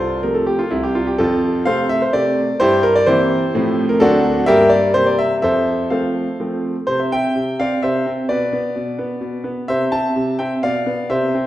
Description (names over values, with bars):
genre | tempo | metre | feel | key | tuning
classical-period piano sonatina | 128 BPM | 3/4 | straight | F major, C major from 6.9 s | A4 = 440 Hz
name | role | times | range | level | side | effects
clear concert grand piano | solo | 0.0-11.5 s | C2 to A5 | -15 LUFS | equal | none
room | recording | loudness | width
wet recital hall reverb, RT60 1.5 s | recorded in a church or concert hall | -15 LUFS | side -14 dB against mid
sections
0.0-6.9 A section; 6.9-11.5 B section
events
none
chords
0.0 F/C; 0.7 C5; 1.2 F; 2.6 C7/G; 3.5 F/A; 4.0 D7; 4.5 Gm; 4.9 C7; 5.4 F; 6.9 C; 7.8 N.C.; 9.7 C; 10.6 Bdim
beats
0.23 0.71 | 1.19 1.67 2.14 | 2.61 3.08 3.54 | 4.01 4.47 4.94 | 5.42 5.91 6.39 | 6.87 7.35 7.82 | 8.29 8.76 9.22 | 9.70 10.16 10.63 | 11.10